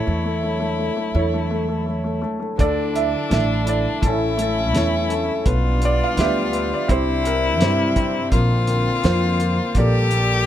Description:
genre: acoustic folk-pop ballad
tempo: 84 BPM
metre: 4/4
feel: straight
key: D minor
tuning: A4 = 440 Hz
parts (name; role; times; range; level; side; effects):
- felt-muted upright piano; melody; 0.0-10.5 s; D3 to F5; -23 LUFS; right 1 dB; none
- clear violin; second line; 0.0-10.5 s; D4 to G4; -24 LUFS; left 5 dB; none
- upright bass; bass; 0.1-10.5 s; A1 to G2; -22 LUFS; equal; none
- warm analog pad; sustained chords; 2.6-10.5 s; C3 to A4; -29 LUFS; right 2 dB; chorus
- cloth-damped thuddy drum kit; drums; 2.6-10.3 s; hi-hat, kick drum, snare drum; -22 LUFS; right 1 dB; none
room: little or no reverb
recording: close, detailed microphones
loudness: -18 LUFS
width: side -11 dB against mid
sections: 0.0-2.6 A section; 2.6-10.5 B section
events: none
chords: 0.0 A; 2.6 Dsus2; 4.0 A; 5.5 G/B; 6.9 Cadd9; 8.3 Bbadd9; 9.8 Gmadd9/Bb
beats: 0.43 1.15 1.87 | 2.59 3.31 4.03 4.74 | 5.46 6.17 6.89 7.61 | 8.32 9.04 9.75

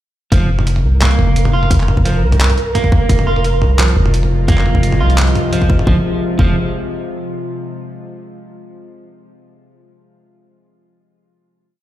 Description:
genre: half-time drum and bass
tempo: 173 BPM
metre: 4/4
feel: swing 53% on 16ths, half-time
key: F minor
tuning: A4 = 439 Hz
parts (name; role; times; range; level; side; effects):
- electric guitar at the edge of break-up; arpeggios; 0.3-6.6 s; F3 to F4; -21 LUFS; right 2 dB; tape echo
- long sustained 808-style bass; bass; 0.3-6.5 s; F1 to C2; -14 LUFS; equal; none
- boom bap sampler-style drum kit; drums; 0.3-5.9 s; handclaps, hi-hat, toms; -19 LUFS; equal; overdrive
- electronic kick drum; drums; 0.3-6.5 s; none; -13 LUFS; equal; none
- flickering grainy texture; texture; 0.8-5.9 s; Bb4; -25 LUFS; right 5 dB; built-in reverb
- bowed-like drone; sustained chords; 4.0-6.0 s; C3 to F4; -22 LUFS; left 1 dB; built-in reverb, sidechain pumping
room: light reverb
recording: played on a big sound system in a bare room, large studio reverb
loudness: -12 LUFS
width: side -13 dB against mid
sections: 0.3-5.9 drop; 5.9-7.3 final chord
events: drop 0.3-5.9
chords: 0.3 Fm; 5.9 N.C.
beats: | 0.32 0.67 1.01 1.36 | 1.71 2.06 2.40 2.75 | 3.10 3.44 3.79 4.14 | 4.48 4.83 5.18 5.52 | 5.87 6.22

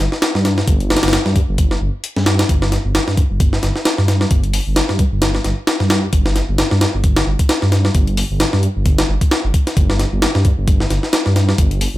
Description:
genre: breakbeat, breaks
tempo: 132 BPM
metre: 4/4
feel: swing 56% on 16ths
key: unclear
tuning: A4 = 435 Hz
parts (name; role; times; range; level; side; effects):
- dark detuned saw bass; bass; 0.0-12.0 s; G1 to G2; -17 LUFS; equal; none
- breakbeat sampler-style drum kit; drums; 0.1-11.9 s; hi-hat, kick drum, snare drum; -16 LUFS; equal; studio ambience
room: digital ambience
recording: none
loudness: -13 LUFS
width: side -16 dB against mid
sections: 0.0-12.0 A section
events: none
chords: none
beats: 0.22 | 0.68 1.13 1.59 2.04 | 2.50 2.95 3.40 3.86 | 4.31 4.77 5.22 5.68 | 6.13 6.59 7.04 7.50 | 7.95 8.40 8.86 9.31 | 9.77 10.22 10.68 11.13 | 11.59

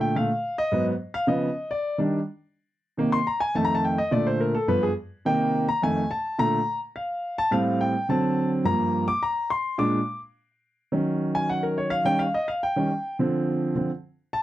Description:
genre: jazz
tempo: 212 BPM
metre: 4/4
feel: straight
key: Bb major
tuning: A4 = 440 Hz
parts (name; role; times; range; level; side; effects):
- warm grand piano; solo; 0.0-14.4 s; F2 to D6; -22 LUFS; equal; none
room: light reverb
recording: dry, close 1970s-style studio recording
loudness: -22 LUFS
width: side -14 dB against mid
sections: 0.0-8.7 A section; 8.7-14.4 A section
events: grand piano solo 0.0-14.4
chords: 0.0 Bbmaj7; 0.7 Abm7; 1.3 Db9; 1.9 Ebmaj7; 3.0 Cm7; 3.6 F7; 4.1 Bbmaj7; 4.7 G7; 5.3 Cm7; 5.8 F7#9; 6.4 Bbmaj7; 7.5 Am7; 8.1 D7; 8.7 Gm7; 9.8 Bb7; 10.9 Ebm7; 12.1 Eb7; 13.2 Dm7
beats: 0.15 0.44 | 0.72 1.00 1.29 1.57 | 1.85 2.14 2.42 2.70 | 2.99 3.27 3.55 3.84 | 4.12 4.40 4.69 4.97 | 5.25 5.54 5.82 6.11 | 6.39 6.67 6.96 7.24 | 7.52 7.81 8.09 8.37 | 8.66 8.94 9.22 9.51 | 9.79 10.07 10.36 10.64 | 10.93 11.21 11.49 11.78 | 12.06 12.34 12.63 12.91 | 13.19 13.48 13.76 14.04 | 14.33

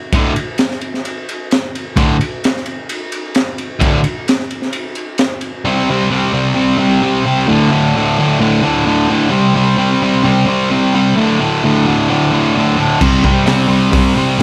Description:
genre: garage rock duo or trio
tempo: 130 BPM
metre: 4/4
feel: straight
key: unclear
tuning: A4 = 439 Hz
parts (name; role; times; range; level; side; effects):
- cranked stack guitar; riff; 0.1-14.4 s; D2 to C4; -14 LUFS; equal; overdrive
- crunchy breakbeat drum kit; drums; 0.1-5.5, 13.0-14.4 s; crash cymbal, hi-hat, kick drum, ride cymbal, snare drum; -19 LUFS; equal; none
room: light reverb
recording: none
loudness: -14 LUFS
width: mono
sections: 0.0-5.7 A section; 5.7-14.4 B section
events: none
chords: 0.0 D5; 5.7 C5; 7.5 D5; 9.3 C5; 11.2 D5; 13.0 C5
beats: | 0.12 0.58 1.04 1.50 | 1.97 2.43 2.89 3.35 | 3.81 4.27 4.73 5.19 | 5.65 6.12 6.58 7.03 | 7.49 7.95 8.41 8.87 | 9.33 9.79 10.25 10.71 | 11.17 11.63 12.09 12.55 | 13.01 13.47 13.93 14.38

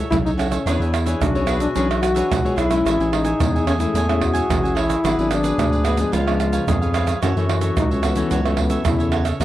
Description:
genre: samba and choro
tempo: 110 BPM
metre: 4/4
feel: straight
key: unclear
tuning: A4 = 439 Hz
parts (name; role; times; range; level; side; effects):
- warm clarinet; second line; 0.0-9.4 s; E4 to G#4; -28 LUFS; left 3 dB; none
- cavaquinho; accompaniment; 0.0-9.4 s; D4 to G#5; -29 LUFS; right 5 dB; none
- nylon-string guitar; accompaniment; 0.0-9.4 s; F#2 to C#5; -26 LUFS; left 4 dB; none
- growling FM bass; bass; 0.0-9.4 s; G#1 to F#2; -22 LUFS; equal; none
- breathy trombone; melody; 0.1-9.2 s; G#3 to F#4; -23 LUFS; left 2 dB; none
- egg shaker, surdo, pandeiro and tamborim; percussion; 0.1-9.4 s; none; -24 LUFS; right 5 dB; none
room: little or no reverb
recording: dry, close 1970s-style studio recording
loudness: -17 LUFS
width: side -14 dB against mid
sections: 0.0-9.4 A section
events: none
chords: 0.0 F#m9; 0.7 E13; 2.9 Amaj7; 5.0 G#m7b5; 6.1 C#7b9; 7.2 F#m7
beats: 0.12 | 0.67 1.22 1.76 2.31 | 2.86 3.40 3.95 4.50 | 5.04 5.59 6.13 6.68 | 7.23 7.77 8.32 8.87 | 9.41

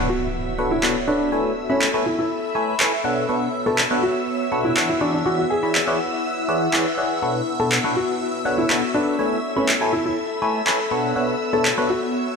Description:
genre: piano house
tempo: 122 BPM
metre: 4/4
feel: straight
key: B dorian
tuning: A4 = 439 Hz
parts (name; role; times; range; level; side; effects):
- string machine, violins; sustained chords; 0.0-12.4 s; E5 to E6; -29 LUFS; equal; ensemble chorus
- barking FM electric piano; riff; 0.0-11.9 s; B2 to B5; -23 LUFS; left 1 dB; phaser, ping-pong delay
- impact; sound effects; 0.0-1.3 s; none; -32 LUFS; equal; none
- airy breathy pad; texture; 0.0-12.4 s; B3 to B5; -26 LUFS; left 1 dB; chorus, phaser
- dark baby grand piano; melody; 0.1-12.1 s; C#4 to A4; -24 LUFS; left 1 dB; ping-pong delay
- electronic handclaps; drums; 0.8-11.8 s; none; -24 LUFS; right 1 dB; overdrive
room: wet lush hall reverb, RT60 2.3 s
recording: none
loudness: -18 LUFS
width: side -5 dB against mid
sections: 0.0-12.4 A section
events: impact 0.0-1.3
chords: 0.0 Bm9; 1.3 Amaj9; 3.0 Bm9; 5.0 E13; 7.2 Bm9; 9.2 Amaj9; 10.9 Bm9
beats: 0.34 0.83 | 1.32 1.81 2.31 2.80 | 3.29 3.78 4.27 4.76 | 5.26 5.75 6.24 6.73 | 7.22 7.71 8.21 8.70 | 9.19 9.68 10.17 10.67 | 11.16 11.65 12.14

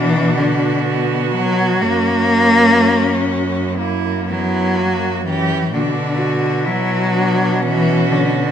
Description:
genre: classical, lyrical piece for cello ensemble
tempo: 62 BPM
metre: 4/4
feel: rubato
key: B minor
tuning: A4 = 440 Hz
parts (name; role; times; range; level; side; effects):
- warm cello; melody; 0.0-8.5 s; A#3 to F#4; -22 LUFS; left 6 dB; none
- warm cello; second line; 0.0-8.5 s; E4 to G4; -23 LUFS; right 12 dB; none
- rich cello; accompaniment; 0.0-8.5 s; D3 to A#3; -16 LUFS; left 1 dB; none
- warm cello; bass; 0.0-8.5 s; F#2 to B2; -22 LUFS; right 3 dB; none
room: moderate scoring stage reverb, RT60 1.5 s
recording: close, detailed microphones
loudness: -14 LUFS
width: side -8 dB against mid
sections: 0.0-8.5 A section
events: none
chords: 0.0 Bm; 1.8 F#7; 5.7 Bm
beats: 0.86 | 1.83 2.81 3.79 4.78 | 5.73 6.66 7.62

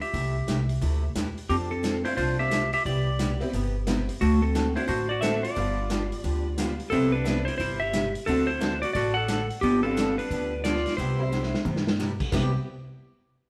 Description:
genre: country, western swing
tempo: 177 BPM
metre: 4/4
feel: swing 64% on 8ths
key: C major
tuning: A4 = 441 Hz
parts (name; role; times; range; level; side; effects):
- clean lap steel guitar; melody; 0.0-12.0 s; A3 to F#5; -29 LUFS; equal; none
- vintage drum kit; drums; 0.0-12.4 s; crash cymbal, hi-hat, kick drum, snare drum, toms; -33 LUFS; equal; none
- picked steel-string acoustic guitar; accompaniment; 0.1-12.5 s; C3 to A4; -37 LUFS; equal; none
- upright bass; bass; 0.1-12.5 s; G1 to G2; -32 LUFS; equal; none
- tack piano; accompaniment; 2.0-12.5 s; G3 to B4; -37 LUFS; equal; none
room: wet stone room reverb, RT60 1.2 s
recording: band playing live in one room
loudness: -26 LUFS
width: mono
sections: 0.0-12.3 A section; 12.3-13.5 B section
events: drum fill 11.3-12.0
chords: 0.1 C6; 1.5 F6; 2.8 Cmaj7; 4.2 D7; 5.6 G7; 6.9 Cmaj7; 8.3 D7; 9.6 G7; 11.0 Cmaj7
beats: | 0.14 0.47 0.81 1.15 | 1.49 1.83 2.17 2.51 | 2.85 3.19 3.53 3.87 | 4.21 4.54 4.88 5.22 | 5.56 5.90 6.24 6.58 | 6.92 7.25 7.59 7.93 | 8.27 8.61 8.95 9.29 | 9.62 9.96 10.30 10.64 | 10.97 11.31 11.65 11.98 | 12.32

